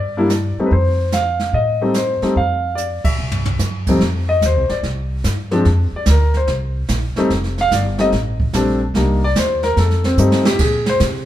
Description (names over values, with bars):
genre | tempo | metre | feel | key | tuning
jazz piano trio | 146 BPM | 4/4 | swing 66% on 8ths | F mixolydian | A4 = 442 Hz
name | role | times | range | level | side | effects
warm concert grand piano | melody | 0.0-11.0 s | F2 to F5 | -17 LUFS | left 1 dB | none
upright bass | bass | 0.0-11.3 s | F1 to C3 | -19 LUFS | equal | none
jazz brush drum kit | drums | 0.3-11.3 s | brushed snare drum, crash cymbal, hi-hat, kick drum, ride cymbal, snare drum, toms | -22 LUFS | right 2 dB | none
room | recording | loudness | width
moderate stone room reverb, RT60 1.4 s | band playing live in one room | -15 LUFS | side -12 dB against mid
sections
0.0-4.0 A section; 4.0-11.3 B section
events
drum fill 2.8-3.6, 10.2-10.6; band accent 3.0; grand piano solo 4.0-11.3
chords
0.0 Csus2 (rootless); 0.7 F7; 3.2 C; 4.0 Fsus2; 5.7 Bbadd9; 7.3 Fadd9; 9.0 Cm7; 9.8 F9; 10.6 Bb7sus2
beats
0.30 | 0.71 1.13 1.54 1.95 | 2.36 2.77 3.19 3.60 | 4.01 4.42 4.83 5.25 | 5.66 6.07 6.48 6.89 | 7.30 7.72 8.13 8.54 | 8.95 9.36 9.78 10.19 | 10.60 11.01